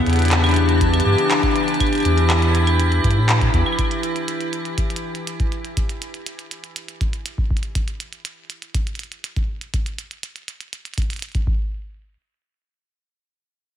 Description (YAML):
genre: IDM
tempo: 121 BPM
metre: 4/4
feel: straight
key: unclear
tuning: A4 = 444 Hz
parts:
  - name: icy glass pad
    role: sustained chords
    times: 0.0-3.8 s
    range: E3 to G4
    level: -20 LUFS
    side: left 1 dB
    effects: chorus, built-in reverb, vintage 12-bit sampler grit
  - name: round analog bass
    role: bass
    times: 0.1-3.6 s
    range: E2 to A2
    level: -17 LUFS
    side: equal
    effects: tube saturation
  - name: glitchy drum kit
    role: drums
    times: 0.1-11.4 s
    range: claves, handclaps, hi-hat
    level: -26 LUFS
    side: right 1 dB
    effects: small room ambience, analog delay
  - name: electronic kick drum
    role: drums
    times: 0.8-11.6 s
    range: none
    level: -22 LUFS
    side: equal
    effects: overdrive, small room ambience
room: moderate lush hall reverb, RT60 1.8 s, digital ambience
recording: dreamy mix soaked in reverb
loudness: -18 LUFS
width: side -9 dB against mid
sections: 0.0-11.7 A section; 11.7-13.8 B section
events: none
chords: 0.0 Em7; 3.8 N.C.